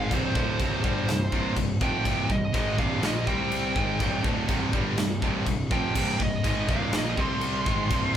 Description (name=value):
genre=heavy metal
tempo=123 BPM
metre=4/4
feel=straight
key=C minor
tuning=A4 = 441 Hz
part: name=high-gain lead guitar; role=melody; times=0.0-8.1 s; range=C5 to C6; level=-31 LUFS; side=right 2 dB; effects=distortion
part: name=high-gain distorted guitar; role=riff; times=0.0-8.2 s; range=C2 to C4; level=-30 LUFS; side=right 8 dB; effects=distortion
part: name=scooped high-gain guitar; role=riff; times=0.0-8.2 s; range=C2 to C4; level=-32 LUFS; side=left 8 dB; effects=distortion
part: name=tight distorted guitar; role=riff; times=0.0-8.2 s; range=C2 to C4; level=-35 LUFS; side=left 1 dB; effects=distortion
part: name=fuzz picked electric bass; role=bass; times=0.0-8.1 s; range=C1 to C2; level=-32 LUFS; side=left 1 dB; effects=overdrive
part: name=big rock drum kit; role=drums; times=0.1-8.0 s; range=china cymbal, crash cymbal, kick drum, snare drum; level=-28 LUFS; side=equal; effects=none
room=light reverb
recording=band playing live in one room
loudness=-23 LUFS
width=side -10 dB against mid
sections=0.0-8.2 A section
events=half time 0.0-8.2; lead electric guitar solo 0.0-8.2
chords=0.0 Cm